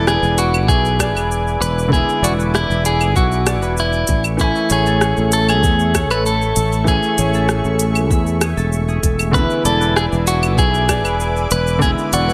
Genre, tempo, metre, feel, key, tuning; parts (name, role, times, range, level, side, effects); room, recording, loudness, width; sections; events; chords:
sunset chillout; 97 BPM; 4/4; straight; A major; A4 = 440 Hz
clean electric guitar; melody; 0.0-12.3 s; E4 to B4; -21 LUFS; equal; spring reverb, tape echo
warm baby grand piano; accompaniment; 0.0-12.3 s; D3 to G#5; -27 LUFS; equal; digital delay
lush unison pad; sustained chords; 0.0-12.3 s; A3 to D6; -28 LUFS; equal; chorus
concert harp; arpeggios; 0.0-12.3 s; G#4 to E5; -29 LUFS; equal; digital delay
sustaining fretless electric bass; bass; 0.0-12.3 s; E1 to E2; -21 LUFS; equal
smooth R&B drum kit; drums; 0.1-12.3 s; cabasa, claves, hi-hat, rim click; -24 LUFS; equal
electronic kick drum; drums; 0.7-11.9 s; -21 LUFS; equal
light reverb; -16 LUFS; mono
0.0-12.3 A section
0.0 E7; 4.1 Amaj7; 9.3 E7